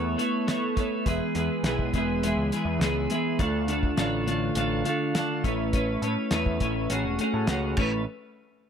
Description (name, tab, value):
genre	indie rock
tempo	103 BPM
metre	4/4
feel	straight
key	A major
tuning	A4 = 440 Hz
part	twelve-string electric guitar	riff	0.0-8.0 s	D3 to C#5	-26 LUFS	equal	double-tracked left and right
part	growling picked electric bass	bass	0.0-8.0 s	E1 to A2	-31 LUFS	equal	overdrive
part	cloth-damped thuddy drum kit	drums	0.2-7.9 s	crash cymbal, hi-hat, kick drum, snare drum	-29 LUFS	equal	none
room	light reverb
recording	none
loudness	-24 LUFS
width	side -7 dB against mid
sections	0.0-8.1 A section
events	drum fill 7.8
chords	0.0 Aadd9; 1.1 E; 3.4 Dm; 5.4 Aadd9; 6.9 F#madd9; 7.8 Aadd9; 8.1 N.C.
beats	0.48 | 1.06 1.65 2.23 2.82 | 3.40 3.98 4.57 5.15 | 5.74 6.32 6.90 7.49